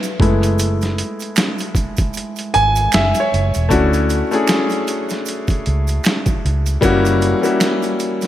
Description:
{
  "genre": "R&B, neo-soul",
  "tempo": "77 BPM",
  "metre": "4/4",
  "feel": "swing 58% on 16ths",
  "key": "unclear",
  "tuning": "A4 = 441 Hz",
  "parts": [
    { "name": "clear grand piano", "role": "accompaniment", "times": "0.0-8.3 s", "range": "G3 to G#5", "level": "-18 LUFS", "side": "left 1 dB", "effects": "none" },
    { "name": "boom bap sampler-style drum kit", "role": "drums", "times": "0.0-8.3 s", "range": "hi-hat, kick drum, snare drum", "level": "-20 LUFS", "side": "right 1 dB", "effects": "overdrive, gated reverb" },
    { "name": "maracas and finger snaps", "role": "percussion", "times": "0.0-8.3 s", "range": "none", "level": "-29 LUFS", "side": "right 7 dB", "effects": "none" },
    { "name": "vintage muted fingered electric bass", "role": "bass", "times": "0.2-7.3 s", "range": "E1 to D2", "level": "-18 LUFS", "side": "equal", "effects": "none" }
  ],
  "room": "moderate plate reverb, RT60 3.3 s",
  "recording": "bright 1980s-style digital production",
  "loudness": "-14 LUFS",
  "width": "side -12 dB against mid",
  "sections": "0.0-3.7 A section; 3.7-8.3 B section",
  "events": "grand piano solo 0.0-3.7; kick muted 2.1-3.7",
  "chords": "0.2 F#m11; 3.7 Dmaj9; 6.8 F#7b9"
}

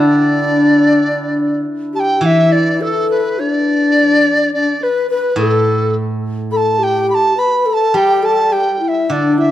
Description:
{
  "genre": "chinese traditional, Chinese chamber ensemble",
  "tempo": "105 BPM",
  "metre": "4/4",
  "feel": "rubato",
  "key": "D zhi mode",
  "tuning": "A4 = 439 Hz",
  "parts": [
    { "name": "large dizi", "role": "melody", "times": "0.0-9.5 s", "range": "A4 to B5", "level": "-16 LUFS", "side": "right 1 dB", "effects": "none" },
    { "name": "breathy mellow low xiao", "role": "second line", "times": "0.0-9.5 s", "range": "D4 to B4", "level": "-15 LUFS", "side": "left 3 dB", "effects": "none" },
    { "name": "hammered dulcimer", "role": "second line", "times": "0.0-3.6 s", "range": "D4 to A4", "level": "-26 LUFS", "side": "right 4 dB", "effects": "none" },
    { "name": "steel-string zither", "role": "accompaniment", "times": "0.0-9.5 s", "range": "A2 to G3", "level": "-18 LUFS", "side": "right 2 dB", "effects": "none" }
  ],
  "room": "wet recital hall reverb, RT60 1.4 s",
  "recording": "dark, warm production",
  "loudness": "-12 LUFS",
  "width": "side -12 dB against mid",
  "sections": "0.0-2.2 A section; 2.2-9.5 B section",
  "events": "none",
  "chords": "none"
}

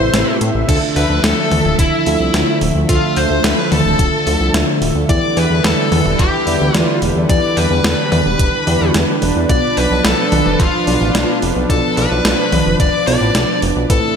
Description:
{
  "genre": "synthwave",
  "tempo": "109 BPM",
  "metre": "4/4",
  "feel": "straight",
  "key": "unclear",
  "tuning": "A4 = 441 Hz",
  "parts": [
    { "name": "dark smooth lead guitar", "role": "melody", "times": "0.0-14.2 s", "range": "E4 to D5", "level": "-19 LUFS", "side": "left 2 dB", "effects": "overdrive, slapback echo, tape echo" },
    { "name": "string machine, violins", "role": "second line", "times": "0.0-14.2 s", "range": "E5 to D6", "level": "-25 LUFS", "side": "left 1 dB", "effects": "ensemble chorus" },
    { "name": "warm analog pad", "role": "sustained chords", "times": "0.0-14.2 s", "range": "C3 to E5", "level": "-20 LUFS", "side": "right 2 dB", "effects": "chorus, sidechain pumping" },
    { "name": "FM electric piano with soft pad layer", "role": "stabs", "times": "0.0-14.2 s", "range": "A2 to E5", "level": "-21 LUFS", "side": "left 1 dB", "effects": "chorus" },
    { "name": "fat analog bass", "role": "bass", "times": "0.0-14.0 s", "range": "D1 to A2", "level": "-18 LUFS", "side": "equal", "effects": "none" },
    { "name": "clean 12-bit digital drum machine", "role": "drums", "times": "0.1-14.0 s", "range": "crash cymbal, hi-hat, snare drum, toms", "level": "-19 LUFS", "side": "equal", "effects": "none" },
    { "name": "electronic kick drum", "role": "drums", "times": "0.7-14.0 s", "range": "none", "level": "-17 LUFS", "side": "equal", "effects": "none" }
  ],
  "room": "moderate lush hall reverb, RT60 2.1 s",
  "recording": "big arena sound, faint mains hum",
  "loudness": "-12 LUFS",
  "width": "side -7 dB against mid",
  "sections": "0.0-14.2 A section",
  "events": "none",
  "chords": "0.0 Amadd9; 0.7 Dmadd9; 5.1 Em7; 9.5 Bdim"
}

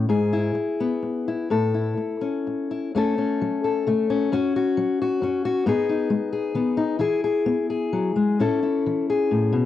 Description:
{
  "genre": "folk, solo fingerstyle acoustic guitar",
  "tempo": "122-137 BPM",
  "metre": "3/4",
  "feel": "rubato",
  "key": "unclear",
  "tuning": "A4 = 440 Hz",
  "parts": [
    { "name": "fingerpicked steel-string acoustic guitar", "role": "solo", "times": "0.0-9.7 s", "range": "F#2 to A4", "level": "-21 LUFS", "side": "left 3 dB", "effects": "cassette tape" }
  ],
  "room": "moderate studio reverb, RT60 0.6 s",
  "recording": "home recording on cassette",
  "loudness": "-21 LUFS",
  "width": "side -12 dB against mid",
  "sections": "0.0-2.9 A section; 2.9-9.7 B section",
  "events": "none",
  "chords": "0.1 E/G#; 1.5 A; 2.9 F#m; 4.3 F#5; 5.7 G#m; 7.0 E; 8.4 A"
}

